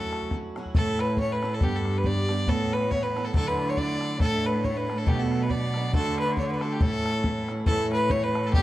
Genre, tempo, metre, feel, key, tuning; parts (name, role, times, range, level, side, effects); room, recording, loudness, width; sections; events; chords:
celtic folk, Celtic polka; 139 BPM; 2/4; swing 57% on 8ths; A mixolydian; A4 = 440 Hz
clear fiddle; melody; 0.0-8.6 s; G4 to D5; -28 LUFS; equal
picked swing-style acoustic guitar; accompaniment; 0.0-8.6 s; D2 to A4; -31 LUFS; right 1 dB
bodhran; percussion; 0.1-8.6 s; -28 LUFS; left 1 dB
bright cello; bass; 0.7-8.6 s; G2 to D3; -29 LUFS; right 1 dB
light reverb; dark, warm production; -23 LUFS; side -15 dB against mid
0.7-7.7 A section
0.0 A6; 0.7 A; 1.6 G; 2.5 Aadd9; 3.3 Dadd9; 4.2 Asus4; 5.1 Bm7; 5.9 D; 6.8 A